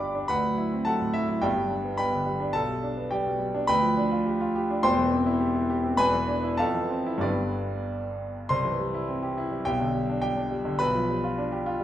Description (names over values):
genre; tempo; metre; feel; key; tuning
classical, virtuoso piano study; 105 BPM; 2/4; rubato; G major, C major from 3.7 s; A4 = 440 Hz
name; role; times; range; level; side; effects
clear concert grand piano; solo; 0.0-11.8 s; E1 to D6; -24 LUFS; equal; none
room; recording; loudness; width
wet recital hall reverb, RT60 1.4 s; minimal, uncompressed stereo recording; -24 LUFS; side -12 dB against mid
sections
0.0-8.5 A section; 8.5-11.8 B section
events
none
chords
0.3 D13; 1.4 G; 2.5 G/B; 3.7 G7/D; 4.8 C/E; 6.0 E7; 6.6 Fmaj7; 7.2 G; 8.5 C; 9.7 G/B; 10.8 G7/B